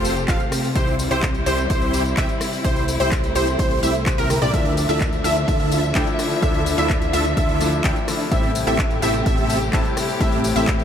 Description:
EDM, festival progressive house; 127 BPM; 4/4; straight; A4 = 440 Hz
warm symphonic string section; sustained chords; 0.0-10.8 s; C3 to E5; -26 LUFS; left 1 dB; sidechain pumping
wide unison pluck; arpeggios; 0.0-10.7 s; Bb4 to A5; -26 LUFS; equal; sidechain pumping, analog delay
dense compressed supersaw; riff; 0.0-10.7 s; C4 to A5; -25 LUFS; right 1 dB; wide subtle chorus, sidechain pumping, analog delay
fat analog bass; bass; 0.0-10.8 s; F1 to D2; -25 LUFS; equal; sidechain pumping
house drum kit; drums; 0.0-10.8 s; handclaps, hi-hat, rim click, tambourine, toms; -28 LUFS; left 1 dB
electronic kick drum; drums; 0.3-10.8 s; -22 LUFS; equal
bright concert grand piano; accompaniment; 4.5-10.8 s; A2 to E5; -27 LUFS; left 4 dB; vintage 12-bit sampler grit, sidechain pumping, analog delay
moderate huge ambient reverb, RT60 4.3 s; dreamy mix soaked in reverb; -17 LUFS; side -8 dB against mid
0.0-10.8 A section
drum fill 4.3
0.0 F; 0.8 C; 4.5 Dmadd9; 8.3 Am7

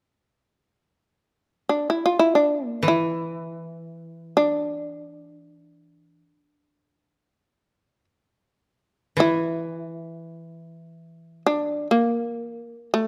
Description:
japanese traditional, Japanese chamber music; free time; A4 = 442 Hz
shamisen; melody; 1.7-13.1 s; A3 to F4; -24 LUFS; equal
koto; accompaniment; 2.8-12.5 s; E3; -32 LUFS; equal
light reverb; close, detailed microphones; -23 LUFS; mono
0.9-13.1 A section

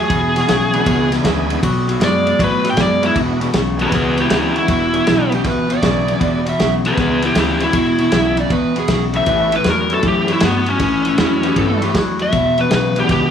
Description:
electric blues shuffle; 157 BPM; 4/4; swing 66% on 8ths; E mixolydian; A4 = 439 Hz
biting lead guitar; melody; 0.0-13.3 s; B3 to G5; -17 LUFS; left 1 dB; overdrive
electric guitar through a small old amp; riff; 0.0-13.3 s; E2 to G#3; -19 LUFS; left 2 dB
upright bass; bass; 0.0-13.3 s; E1 to A2; -22 LUFS; left 1 dB
vintage drum kit; drums; 0.1-13.2 s; kick drum, ride cymbal, snare drum; -21 LUFS; equal
bright tonewheel organ; accompaniment; 0.7-13.3 s; G#3 to G#4; -24 LUFS; right 6 dB; slow rotary speaker, overdrive, chorus vibrato
overdriven slide guitar; second line; 5.1-12.0 s; E4 to E5; -22 LUFS; right 6 dB
light reverb; studio reverb; -13 LUFS; side -8 dB against mid
0.0-3.2 A section; 3.2-13.3 B section
lead electric guitar solo 0.0-3.2
0.1 E7; 1.6 B5; 3.2 E7; 9.3 A7; 12.3 E7

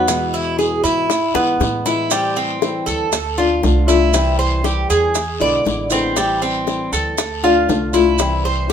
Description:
latin, Cuban son and guajira; 118 BPM; 4/4; straight; A minor; A4 = 440 Hz
flamenco guitar; accompaniment; 0.0-8.7 s; B2 to F4; -19 LUFS; left 5 dB
Cuban tres; arpeggios; 0.0-8.7 s; G3 to D5; -18 LUFS; right 2 dB
upright bass; bass; 0.0-8.7 s; A1 to A2; -22 LUFS; right 1 dB
bongos; percussion; 0.1-8.7 s; -23 LUFS; left 7 dB
guiro; percussion; 0.1-8.7 s; -31 LUFS; left 6 dB
maracas; percussion; 0.1-8.7 s; -25 LUFS; right 7 dB
moderate studio reverb, RT60 0.6 s; minimal, uncompressed stereo recording; -15 LUFS; side -8 dB against mid
0.0-2.1 A section; 2.1-8.7 B section
drum fill 1.3-2.1
0.1 E; 2.1 Am7; 3.1 Dm; 4.1 C; 5.1 E7; 6.2 Am7; 7.2 Dm; 8.2 C

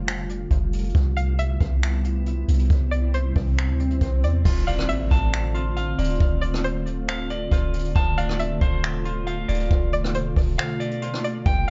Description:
hip hop, atmospheric cloud-rap; 137 BPM; 4/4; half-time; D dorian; A4 = 443 Hz
string-like resonator pluck; melody; 0.0-11.7 s; C5 to F5; -33 LUFS; equal; chorus, low-pass filter, delay
glassy FM pad; sustained chords; 0.0-11.7 s; B2 to F4; -32 LUFS; equal; ensemble chorus, built-in reverb, sidechain pumping
soft 808-style bass; bass; 0.0-11.7 s; D1 to E2; -26 LUFS; equal
jazz brush drum kit; drums; 0.1-11.7 s; crash cymbal, finger snaps, hi-hat, kick drum, rim click; -26 LUFS; equal; vintage 12-bit sampler grit
swell and impact; sound effects; 3.5-6.2 s; -38 LUFS; equal
clean electric guitar; arpeggios; 4.5-11.7 s; F4 to A5; -33 LUFS; equal; low-pass filter, delay
little or no reverb; nothing above 7.7 kHz; -23 LUFS; mono
0.0-4.5 A section; 4.5-11.7 B section
swell 3.5-4.5; impact 4.5-6.2; break 10.6-11.5
0.0 F69; 0.9 Cmaj7; 4.5 Dm7

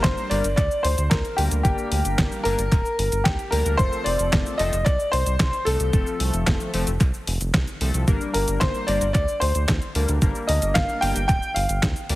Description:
italo disco; 112 BPM; 4/4; straight; G minor; A4 = 439 Hz
warm baby grand piano; melody; 0.0-11.8 s; G4 to G5; -25 LUFS; left 1 dB; digital delay
chorused polysynth; stabs; 0.0-12.2 s; F3 to Bb4; -30 LUFS; left 3 dB
round analog bass; bass; 0.0-12.2 s; D1 to D2; -24 LUFS; equal; tube saturation
detuned 8-bit digital drum machine; drums; 0.0-12.2 s; cabasa, handclaps, hi-hat, snare drum; -27 LUFS; equal; overdrive
electronic kick drum; drums; 0.0-11.9 s; -22 LUFS; equal; overdrive
light reverb, digital ambience; heavily compressed radio sound, multiband compression; -20 LUFS; side -17 dB against mid
0.0-12.2 A section
0.0 Gm; 3.8 F; 8.1 Gm

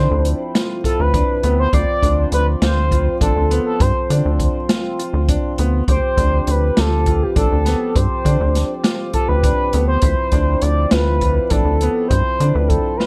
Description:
progressive instrumental, band music in an uneven meter; 202 BPM (eighths); 7/8; straight; D dorian; A4 = 440 Hz
expressive synth lead; melody; 0.0-13.1 s; G4 to D5; -23 LUFS; equal; chorus, tape echo
percussive tonewheel organ; accompaniment; 0.0-13.1 s; F3 to G4; -29 LUFS; equal; overdrive, slow rotary speaker
warm grand piano; arpeggios; 0.0-13.1 s; B3 to F4; -28 LUFS; equal
rubbery square bass; bass; 0.0-12.8 s; A1 to D3; -19 LUFS; equal
open jazz drum kit; drums; 0.2-13.1 s; hi-hat, kick drum, snare drum; -22 LUFS; equal
light reverb; dark, warm production; -17 LUFS; mono
0.0-13.1 A section
0.0 Dm7

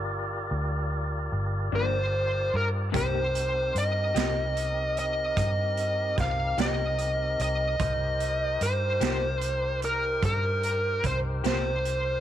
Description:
slow blues; 49 BPM (dotted quarters); 12/8; straight; A4 = 439 Hz
tonewheel organ; sustained chords; 0.0-12.2 s; C4 to D5; -36 LUFS; equal; slow rotary speaker
vintage muted fingered electric bass; bass; 0.0-12.2 s; G1 to G2; -30 LUFS; equal
electric guitar through a small old amp; accompaniment; 1.7-11.7 s; G2 to G4; -34 LUFS; left 14 dB; tremolo
smooth overdriven lead guitar; melody; 1.8-12.2 s; Bb4 to F5; -27 LUFS; equal
raw garage drum kit; drums; 2.9-12.0 s; hi-hat, kick drum, snare drum; -32 LUFS; right 5 dB
moderate spring reverb, RT60 2.2 s; 1960s-style stereo; -25 LUFS; side -11 dB against mid
0.0-12.2 A section
0.0 Gm7; 2.9 Cm7

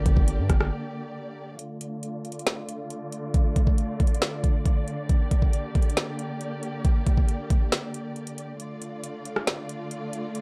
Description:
hip hop, trap; 137 BPM; 4/4; half-time; D minor; A4 = 440 Hz
muted studio string section; sustained chords; 0.0-10.4 s; D3 to D5; -35 LUFS; equal; low-pass filter
long sustained 808-style bass; bass; 0.0-0.7 s; G1 to G2; -28 LUFS; equal
trap drum kit; drums; 0.1-10.4 s; hi-hat, kick drum, rim click, snare drum; -25 LUFS; equal; overdrive
little or no reverb; dark, warm production; -26 LUFS; mono
0.0-1.6 A section; 1.6-8.6 B section; 8.6-10.4 C section
break 0.7-1.6, 7.7-8.6, 8.6-10.4; filter sweep on string section 1.6-8.6
0.0 Gm; 1.6 Dm; 5.1 Gm; 8.6 Dm

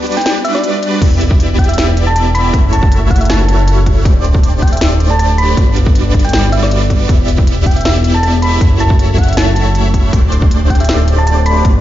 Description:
future bass; 158 BPM; 4/4; swing 54% on 16ths, half-time; E minor; A4 = 445 Hz
airy breathy pad; sustained chords; 0.0-1.0 s; B3; -29 LUFS; left 4 dB
supersaw chords; riff; 0.0-11.8 s; G3 to E5; -17 LUFS; right 1 dB; phaser, sidechain pumping, dub echo
trap drum kit; drums; 0.1-11.7 s; crash cymbal, hi-hat, snare drum; -20 LUFS; left 1 dB
thumb-piano-like synth pluck; melody; 0.2-11.6 s; D5 to B5; -18 LUFS; equal; chorus, sidechain pumping, tape echo
fat analog bass; bass; 1.0-11.8 s; D1 to G1; -12 LUFS; equal; sidechain pumping
electronic kick drum; drums; 1.0-11.7 s; -11 LUFS; equal
digital ambience; played on a big sound system in a bare room, large studio reverb, nothing above 7.5 kHz; -9 LUFS; side -13 dB against mid
0.0-1.0 A section; 1.0-11.8 A section
break 0.0-1.0; drop 0.0-1.0, 1.0-11.8
0.0 Gmaj7; 1.0 Em7; 2.5 F#m7; 4.1 D7sus4; 5.6 Gmaj7; 7.1 Em7; 8.6 F#m7; 10.1 D7sus4

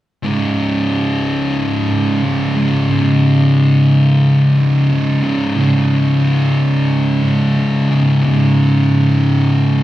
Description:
metal; 90 BPM; 4/4; straight; A4 = 440 Hz
thick fuzz guitar; riff; 0.2-9.8 s; C#2 to C#3; -13 LUFS; left 2 dB; distortion
thick fuzz guitar; riff; 0.2-9.8 s; C#2 to C#3; -17 LUFS; right 4 dB; distortion
light reverb, digital ambience; live gig heard through the venue's PA, recital hall reverb; -12 LUFS; side -14 dB against mid
0.2-9.8 A section
0.2 C#5

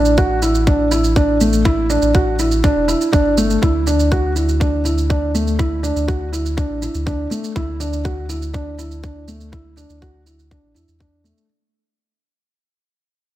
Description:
piano and strings electronica; 122 BPM; 4/4; straight; D major; A4 = 439 Hz
felt-muted upright piano; riff; 0.0-11.4 s; A3 to F#4; -18 LUFS; right 1 dB; tape echo
warm sub bass; bass; 0.0-11.3 s; E1 to E2; -21 LUFS; equal; tube saturation, sidechain pumping
shaker; drums; 0.1-11.5 s; -29 LUFS; right 5 dB
electronic kick drum; drums; 0.2-11.1 s; -18 LUFS; equal
moderate scoring stage reverb, RT60 1.7 s, digital ambience; -15 LUFS; side -14 dB against mid
0.0-3.6 A section; 3.6-11.5 B section
drop 0.0-3.6; fade-out 3.6-11.5
0.0 A7sus4; 3.6 D5

